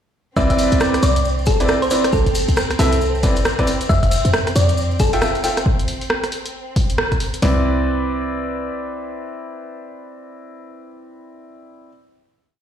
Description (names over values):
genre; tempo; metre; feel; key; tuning
UK garage, two-step garage; 136 BPM; 4/4; swing 61% on 16ths; C major; A4 = 440 Hz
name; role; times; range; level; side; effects
thumb-piano-like synth pluck; melody; 0.4-5.2 s; A4 to E5; -22 LUFS; left 1 dB; chorus, digital delay
warm studio violin section; sustained chords; 0.4-7.4 s; C4; -29 LUFS; right 1 dB; sidechain pumping
clear baby grand piano; stabs; 0.4-11.9 s; C4 to G5; -22 LUFS; right 1 dB; digital delay
short 808-style bass; bass; 0.4-8.7 s; F1 to F2; -20 LUFS; equal; none
punchy analog drum machine; drums; 0.4-7.5 s; hi-hat, kick drum, snare drum; -19 LUFS; equal; none
maracas; percussion; 0.4-5.6 s; none; -30 LUFS; left 2 dB; none
punchy analog drum machine; drums; 0.5-7.4 s; hi-hat, rim click; -23 LUFS; equal; none
room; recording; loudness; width
light reverb; played on a big sound system in a bare room, large studio reverb; -16 LUFS; side -9 dB against mid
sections
0.4-7.4 drop; 7.4-11.0 final chord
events
drop 0.4-7.4; band accent 7.0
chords
0.4 Cmaj9; 3.7 F5; 7.4 Cmaj9